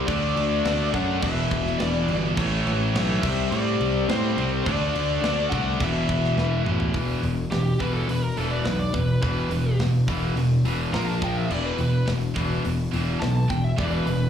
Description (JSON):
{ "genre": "hard rock", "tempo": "105 BPM", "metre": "4/4", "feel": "straight", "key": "E minor", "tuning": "A4 = 440 Hz", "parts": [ { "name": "high-gain distorted guitar", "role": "riff", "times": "0.0-6.9 s", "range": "E2 to D4", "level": "-30 LUFS", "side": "right 1 dB", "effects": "distortion, slapback echo" }, { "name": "overdriven semi-hollow guitar", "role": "riff", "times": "0.0-14.3 s", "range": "E2 to D4", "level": "-27 LUFS", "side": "left 5 dB", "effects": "none" }, { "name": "scooped high-gain guitar", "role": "riff", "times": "0.0-14.3 s", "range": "E2 to D4", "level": "-29 LUFS", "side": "right 7 dB", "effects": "distortion" }, { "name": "fuzz picked electric bass", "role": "bass", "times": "0.0-14.3 s", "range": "E1 to A2", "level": "-26 LUFS", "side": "right 1 dB", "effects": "overdrive" }, { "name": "biting lead guitar", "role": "melody", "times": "0.1-14.3 s", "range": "G4 to A#5", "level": "-30 LUFS", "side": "left 2 dB", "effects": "overdrive, slapback echo" }, { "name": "tight metal drum kit", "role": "drums", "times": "0.1-14.2 s", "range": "crash cymbal, hi-hat, kick drum, snare drum, toms", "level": "-32 LUFS", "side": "right 1 dB", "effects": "none" } ], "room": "small room ambience", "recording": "live gig heard through the venue's PA, club reverb", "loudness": "-21 LUFS", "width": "side -8 dB against mid", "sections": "0.0-6.9 A section; 6.9-14.3 B section", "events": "drum fill 6.4-6.9; lead electric guitar solo 6.9-14.3", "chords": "0.1 D; 1.2 Em; 2.4 A; 3.2 C5; 4.7 D5; 5.8 E5; 10.9 A#5; 11.5 E5", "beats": "| 0.08 0.66 1.23 1.80 | 2.38 2.95 3.52 4.09 | 4.66 5.23 5.80 6.38 | 6.95 7.52 8.09 8.66 | 9.23 9.80 10.37 10.94 | 11.51 12.08 12.65 13.22 | 13.79" }